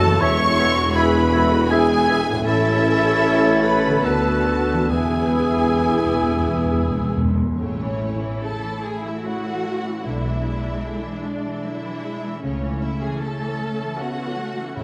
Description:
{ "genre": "classical, slow romantic movement for symphony orchestra", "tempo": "64-81 BPM", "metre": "3/4", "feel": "rubato", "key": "A major", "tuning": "A4 = 440 Hz", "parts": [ { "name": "rich symphonic violin section", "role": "melody", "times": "0.0-14.8 s", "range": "C#5 to C#6", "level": "-32 LUFS", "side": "equal", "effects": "none" }, { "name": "dark symphonic violin section", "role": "second line", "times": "0.0-14.8 s", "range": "C#4 to C#6", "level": "-32 LUFS", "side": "equal", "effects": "none" }, { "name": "mellow cor anglais", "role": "second line", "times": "0.0-7.1 s", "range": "E4 to C#5", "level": "-30 LUFS", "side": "equal", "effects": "none" }, { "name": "clear symphonic viola section", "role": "accompaniment", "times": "0.0-14.8 s", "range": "C#3 to G#4", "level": "-31 LUFS", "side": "equal", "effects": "none" }, { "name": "dark French horn section", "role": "sustained chords", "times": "0.0-7.2 s", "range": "G#3 to F#4", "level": "-27 LUFS", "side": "equal", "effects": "none" }, { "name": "concert harp", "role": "arpeggios", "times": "0.0-14.8 s", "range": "A2 to E5", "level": "-33 LUFS", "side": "equal", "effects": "none" }, { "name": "mellow trumpet", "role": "stabs", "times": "0.0-7.1 s", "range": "E4 to C#5", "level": "-28 LUFS", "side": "equal", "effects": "none" }, { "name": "dark symphonic cello section", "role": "bass", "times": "0.0-14.8 s", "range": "F#3 to B4", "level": "-31 LUFS", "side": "equal", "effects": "none" }, { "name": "mellow tuba", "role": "bass", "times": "0.0-7.4 s", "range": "E1 to D2", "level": "-28 LUFS", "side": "equal", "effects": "none" }, { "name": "rich symphonic double bass section", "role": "bass", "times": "0.0-14.8 s", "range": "A1 to F#2", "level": "-29 LUFS", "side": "equal", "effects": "none" }, { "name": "hollow concert flute", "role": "second line", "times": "0.2-7.2 s", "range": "E6 to A6", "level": "-30 LUFS", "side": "equal", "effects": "none" }, { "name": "warm clarinet", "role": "second line", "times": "0.2-7.2 s", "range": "B4 to E5", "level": "-31 LUFS", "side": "equal", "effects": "none" }, { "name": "mellow bassoon", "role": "accompaniment", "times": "0.2-7.2 s", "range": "D3 to E3", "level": "-32 LUFS", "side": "equal", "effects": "none" }, { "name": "timpani", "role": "percussion", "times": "4.9-7.6, 14.8 s", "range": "E2 to A2", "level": "-28 LUFS", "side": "equal", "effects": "none" } ], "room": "moderate concert hall reverb, RT60 2.4 s", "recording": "none", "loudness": "-21 LUFS", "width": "mono", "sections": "0.0-7.6 A section; 7.6-14.8 B section", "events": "timpani fill 4.9-7.6", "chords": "0.2 E; 2.5 A; 4.0 D6; 4.9 E; 7.6 A; 10.1 E7/B; 12.4 A/C#" }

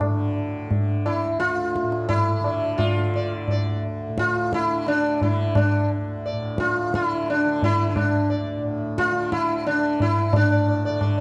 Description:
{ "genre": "indian classical, Hindustani", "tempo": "87 BPM", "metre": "4/4", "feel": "straight", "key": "unclear", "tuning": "A4 = 441 Hz", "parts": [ { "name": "sitar", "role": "melody", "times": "0.0-11.2 s", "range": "D4 to D5", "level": "-25 LUFS", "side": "equal", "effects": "none" }, { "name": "tanpura", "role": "drone", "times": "0.0-11.2 s", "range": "D2 to D3", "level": "-32 LUFS", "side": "equal", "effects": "none" }, { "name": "tabla", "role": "percussion", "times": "0.0-11.2 s", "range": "none", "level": "-26 LUFS", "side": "equal", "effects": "none" } ], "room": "wet recital hall reverb, RT60 1.7 s", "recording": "dark, warm production", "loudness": "-23 LUFS", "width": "mono", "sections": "0.0-10.3 A section", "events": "speeding up 0.0-11.2", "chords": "none" }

